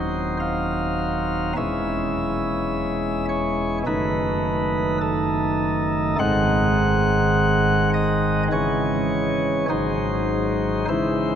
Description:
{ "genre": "classical, chorale-style piece for pipe organ", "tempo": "52 BPM", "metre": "4/4", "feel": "rubato", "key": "C# minor", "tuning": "A4 = 440 Hz", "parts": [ { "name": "chamber organ, sparkling flutes", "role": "solo", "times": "0.0-11.4 s", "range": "Eb1 to F#5", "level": "-20 LUFS", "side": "equal", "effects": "none" } ], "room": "wet cathedral reverb, RT60 6.5 s", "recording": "none", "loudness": "-20 LUFS", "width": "side -8 dB against mid", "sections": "0.0-11.4 A section", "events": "none", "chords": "0.0 Cdim/Eb; 1.6 C#m/E; 3.9 D#dim/F#; 6.2 G#7; 8.5 C#m; 9.7 G#7" }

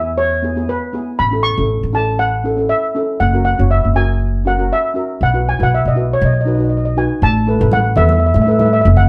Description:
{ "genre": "calypso", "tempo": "119 BPM", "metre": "4/4", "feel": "swing 54% on 16ths", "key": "unclear", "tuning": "A4 = 437 Hz", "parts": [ { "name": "steel pan", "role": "melody", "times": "0.0-9.1 s", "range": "B4 to C#6", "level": "-20 LUFS", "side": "equal", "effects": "none" }, { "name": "steel pan", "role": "accompaniment", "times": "0.0-8.9 s", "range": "B3 to C#5", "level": "-23 LUFS", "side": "equal", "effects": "none" }, { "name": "upright bass", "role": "bass", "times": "0.0-9.1 s", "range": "F#1 to A2", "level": "-17 LUFS", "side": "equal", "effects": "none" }, { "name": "congas", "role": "percussion", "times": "7.7-9.1 s", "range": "none", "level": "-24 LUFS", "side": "equal", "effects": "none" } ], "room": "moderate studio reverb, RT60 0.5 s", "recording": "heard from further back in the room", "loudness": "-15 LUFS", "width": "mono", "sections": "0.0-7.2 A section; 7.2-9.1 B section", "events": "none", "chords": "0.0 E; 1.2 A; 3.2 F#; 5.2 Bsus4; 6.2 B; 7.2 Asus2" }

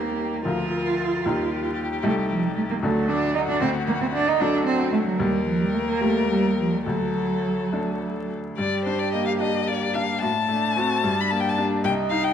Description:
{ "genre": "quick classical-period movement for piano trio", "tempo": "69-78 BPM (dotted quarters)", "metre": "6/8", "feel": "rubato", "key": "G minor", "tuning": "A4 = 440 Hz", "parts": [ { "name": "warm violin", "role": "melody", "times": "0.0-12.3 s", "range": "F#4 to B5", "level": "-28 LUFS", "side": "left 6 dB", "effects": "none" }, { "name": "dark cello", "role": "second line", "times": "0.0-12.3 s", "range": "F3 to G4", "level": "-24 LUFS", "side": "right 3 dB", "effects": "none" }, { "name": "bright baby grand piano", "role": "accompaniment", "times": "0.0-12.3 s", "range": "C2 to Bb4", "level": "-26 LUFS", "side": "left 2 dB", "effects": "none" } ], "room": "moderate scoring stage reverb, RT60 1.7 s", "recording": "vinyl crackle", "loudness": "-21 LUFS", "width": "side -8 dB against mid", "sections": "0.0-8.6 A section; 8.6-12.3 B section", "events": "none", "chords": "0.5 Bb/D; 1.3 Eb; 2.0 Am7b5/C; 2.8 D; 5.2 Eb; 6.9 D; 8.6 Gm; 10.2 F#dim/A; 11.0 Gm" }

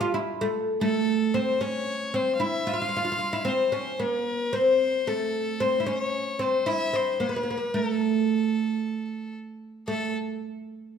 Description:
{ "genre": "Arabic maqam ensemble", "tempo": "112 BPM", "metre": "4/4", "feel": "straight", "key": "A maqam saba", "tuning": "A4 = 440 Hz", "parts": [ { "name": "oud", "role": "melody", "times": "0.0-10.1 s", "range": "A3 to F4", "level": "-25 LUFS", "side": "right 1 dB", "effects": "none" }, { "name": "bright violin", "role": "second line", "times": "0.8-10.1 s", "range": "A4 to F5", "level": "-31 LUFS", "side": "left 3 dB", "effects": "none" } ], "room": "wet recital hall reverb, RT60 1.3 s", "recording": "none", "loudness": "-24 LUFS", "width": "side -7 dB against mid", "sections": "0.0-1.3 A section; 1.3-9.9 B section; 9.9-11.0 C section", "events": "none", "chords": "none" }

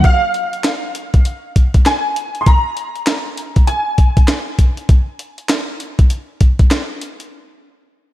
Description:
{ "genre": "R&B, new jack swing", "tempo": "99 BPM", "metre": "4/4", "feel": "swing 61% on 16ths", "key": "unclear", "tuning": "A4 = 443 Hz", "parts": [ { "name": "clear grand piano", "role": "melody", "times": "0.0-4.5 s", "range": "F5 to C6", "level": "-19 LUFS", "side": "equal", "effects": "ensemble chorus, diffuse ambient delay" }, { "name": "breakbeat sampler-style drum kit", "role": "drums", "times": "0.0-7.3 s", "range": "handclaps, hi-hat, kick drum, snare drum", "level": "-13 LUFS", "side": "equal", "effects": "none" } ], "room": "light reverb", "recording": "none", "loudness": "-13 LUFS", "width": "side -15 dB against mid", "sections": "0.0-8.1 A section", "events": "break 7.3-8.1", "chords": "none" }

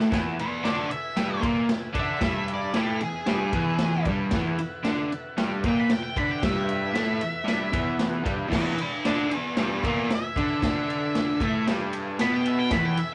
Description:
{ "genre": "garage rock duo or trio", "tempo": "114 BPM", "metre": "4/4", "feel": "straight", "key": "E mixolydian", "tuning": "A4 = 440 Hz", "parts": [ { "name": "combo organ", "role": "sustained chords", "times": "0.0-13.1 s", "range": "B4 to G#5", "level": "-43 LUFS", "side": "equal", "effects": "none" }, { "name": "crunchy overdriven guitar", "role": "riff", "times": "0.0-13.0 s", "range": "E2 to D4", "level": "-28 LUFS", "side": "equal", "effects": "none" }, { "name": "raw garage drum kit", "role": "drums", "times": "0.1-13.1 s", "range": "crash cymbal, kick drum, ride cymbal, snare drum", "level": "-31 LUFS", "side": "equal", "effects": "none" }, { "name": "octave-fuzz lead guitar", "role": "melody", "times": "0.4-13.1 s", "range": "G4 to B5", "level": "-32 LUFS", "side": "equal", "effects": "distortion" } ], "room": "moderate small room reverb, RT60 0.5 s", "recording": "rough rehearsal-room recording, tube saturation, nothing above 10.6 kHz", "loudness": "-26 LUFS", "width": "mono", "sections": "0.1-13.1 A section", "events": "lead electric guitar solo 0.1-13.1", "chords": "0.1 E" }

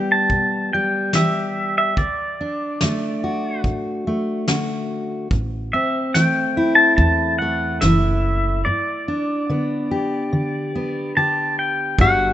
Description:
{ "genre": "acoustic folk duo or small band", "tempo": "72 BPM", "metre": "4/4", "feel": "straight", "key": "unclear", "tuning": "A4 = 440 Hz", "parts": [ { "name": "pedal steel guitar", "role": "melody", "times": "0.0-12.3 s", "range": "D5 to A5", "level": "-20 LUFS", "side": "equal", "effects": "none" }, { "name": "fingerpicked steel-string acoustic guitar", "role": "accompaniment", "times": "0.0-12.3 s", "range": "D2 to G4", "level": "-21 LUFS", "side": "equal", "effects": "none" }, { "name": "soft brush drum kit", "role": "drums", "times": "0.3-12.2 s", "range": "kick drum, snare drum", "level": "-22 LUFS", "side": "equal", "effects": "none" }, { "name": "upright bass", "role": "bass", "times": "5.3-12.3 s", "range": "F#1 to E2", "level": "-22 LUFS", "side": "equal", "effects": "none" } ], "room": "light reverb, small room ambience", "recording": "rough home demo mix, nothing above 8.0 kHz", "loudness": "-18 LUFS", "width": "side -12 dB against mid", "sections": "0.0-12.0 A section", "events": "break 8.7-12.0", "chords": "0.0 Em; 2.0 D; 5.3 Am; 8.7 G" }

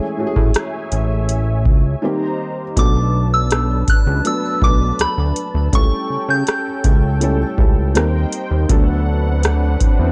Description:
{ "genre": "contemporary R&B", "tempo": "81 BPM", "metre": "4/4", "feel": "straight", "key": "unclear", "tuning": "A4 = 438 Hz", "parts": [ { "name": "soft synth bell", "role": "melody", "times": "0.0-8.3 s", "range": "B5 to G6", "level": "-24 LUFS", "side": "equal", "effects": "chorus, digital delay" }, { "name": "felt-muted upright piano", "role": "accompaniment", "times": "0.0-10.1 s", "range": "Eb3 to B4", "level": "-26 LUFS", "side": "equal", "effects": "none" }, { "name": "warm analog pad", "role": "sustained chords", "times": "0.0-10.1 s", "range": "C#4 to Bb5", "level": "-29 LUFS", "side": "equal", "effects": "chorus, sidechain pumping" }, { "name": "fat analog bass", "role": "bass", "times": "0.2-10.1 s", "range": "A1 to C#3", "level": "-20 LUFS", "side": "equal", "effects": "none" }, { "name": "booming analog drum machine", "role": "drums", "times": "0.4-10.0 s", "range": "hi-hat, kick drum, rim click", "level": "-18 LUFS", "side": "equal", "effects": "none" }, { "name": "swell", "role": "sound effects", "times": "9.3-10.1 s", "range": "none", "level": "-30 LUFS", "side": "equal", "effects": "none" } ], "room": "little or no reverb", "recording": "dark, warm production", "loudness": "-17 LUFS", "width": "mono", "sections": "0.0-2.8 A section; 2.8-10.1 B section", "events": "break 2.0-2.8; swell 9.3-10.1", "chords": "0.0 Amaj7; 2.0 Cm7; 2.8 Bm7; 5.7 A7/C#; 8.0 D#6; 8.7 D6" }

